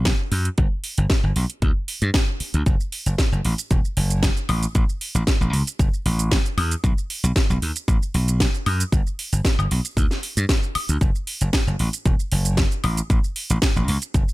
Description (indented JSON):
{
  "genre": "nu-disco, nu disco",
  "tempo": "115 BPM",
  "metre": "4/4",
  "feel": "straight",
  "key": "unclear",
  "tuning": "A4 = 440 Hz",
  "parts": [
    { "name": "slap bass", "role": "bass", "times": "0.0-14.2 s", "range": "E1 to G2", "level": "-21 LUFS", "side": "equal", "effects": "tube saturation" },
    { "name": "electronic kick drum", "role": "drums", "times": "0.1-14.3 s", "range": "none", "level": "-20 LUFS", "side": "equal", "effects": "none" },
    { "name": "house drum kit", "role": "drums", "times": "0.1-14.3 s", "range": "hi-hat, shaker, snare drum, woodblock", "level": "-26 LUFS", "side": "right 1 dB", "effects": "none" }
  ],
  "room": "little or no reverb",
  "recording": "none",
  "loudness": "-19 LUFS",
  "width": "side -19 dB against mid",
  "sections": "0.0-14.3 A section",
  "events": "none",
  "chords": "none",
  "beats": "0.06 | 0.58 1.10 1.62 2.14 | 2.67 3.19 3.71 4.23 | 4.75 5.27 5.80 6.32 | 6.84 7.36 7.88 8.40 | 8.93 9.45 9.97 10.49 | 11.01 11.54 12.06 12.58 | 13.10 13.62 14.14"
}